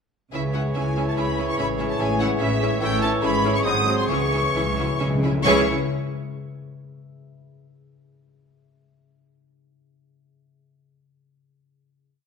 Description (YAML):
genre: classical, dramatic, fast romantic movement for symphony orchestra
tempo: 130-148 BPM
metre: 3/4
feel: rubato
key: C# minor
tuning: A4 = 440 Hz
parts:
  - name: warm symphonic violin section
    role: melody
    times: 0.3-5.7 s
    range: E5 to D#6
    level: -27 LUFS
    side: left 2 dB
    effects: none
  - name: clear clarinet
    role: second line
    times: 0.3-5.6 s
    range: G#4 to A4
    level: -30 LUFS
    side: left 2 dB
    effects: none
  - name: clear oboe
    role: second line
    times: 0.3-5.6 s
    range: B#4 to C#5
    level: -31 LUFS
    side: right 4 dB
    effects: none
  - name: clear symphonic violin section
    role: second line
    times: 0.3-5.7 s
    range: E4 to E5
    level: -34 LUFS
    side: left 1 dB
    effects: none
  - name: flute section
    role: second line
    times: 0.3-5.7 s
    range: C#5 to D#6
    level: -30 LUFS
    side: right 1 dB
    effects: none
  - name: clear bassoon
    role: accompaniment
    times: 0.3-5.6 s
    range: E3 to F#3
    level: -30 LUFS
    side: right 3 dB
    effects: none
  - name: rich symphonic viola section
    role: accompaniment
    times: 0.3-5.7 s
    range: B#3 to F#4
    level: -31 LUFS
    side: right 2 dB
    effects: none
  - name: dark French horn section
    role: sustained chords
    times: 0.3-5.6 s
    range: E3 to E4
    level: -30 LUFS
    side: left 4 dB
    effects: none
  - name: concert harp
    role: arpeggios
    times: 0.3-6.8 s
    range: G#2 to E5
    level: -30 LUFS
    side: left 6 dB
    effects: none
  - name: rich symphonic cello section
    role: bass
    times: 0.3-5.7 s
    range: G#2 to C#3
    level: -28 LUFS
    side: right 2 dB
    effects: none
  - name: warm studio double bass section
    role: bass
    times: 0.3-5.7 s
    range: G#1 to C#2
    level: -31 LUFS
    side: right 2 dB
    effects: none
  - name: timpani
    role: percussion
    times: 4.1-5.7 s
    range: C#3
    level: -29 LUFS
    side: left 1 dB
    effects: none
room: wet scoring stage reverb, RT60 1.6 s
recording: minimal, uncompressed stereo recording, lossy compression artefacts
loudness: -20 LUFS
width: side -6 dB against mid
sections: 0.3-5.5 A section; 5.5-6.8 final chord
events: slowing down 2.2-5.5; timpani fill 4.1-5.5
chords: 0.3 C#m; 1.6 Amaj7; 2.8 A7; 3.2 C#m/G#; 3.6 G#7; 4.1 C#m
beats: | 0.34 0.76 1.17 | 1.58 1.99 2.40 | 2.81 3.23 3.65 | 4.09 4.54 5.00 | 5.46 5.90 6.34